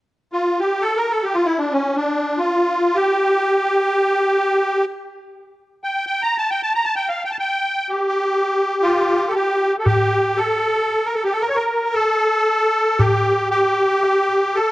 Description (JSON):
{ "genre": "Arabic maqam ensemble", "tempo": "free time", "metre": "none", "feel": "none", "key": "G minor", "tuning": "A4 = 440 Hz", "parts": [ { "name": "musette accordion", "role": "melody", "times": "0.3-14.7 s", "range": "C#4 to Bb5", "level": "-17 LUFS", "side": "equal", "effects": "none" }, { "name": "darbuka", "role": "percussion", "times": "9.9-14.4 s", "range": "none", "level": "-21 LUFS", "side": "left 1 dB", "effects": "none" } ], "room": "light reverb", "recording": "worn, warbling old tape, cassette tape, warbly pitch drift", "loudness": "-16 LUFS", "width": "side -17 dB against mid", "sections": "0.0-9.9 A section; 9.9-14.7 B section", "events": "none", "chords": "none", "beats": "free time" }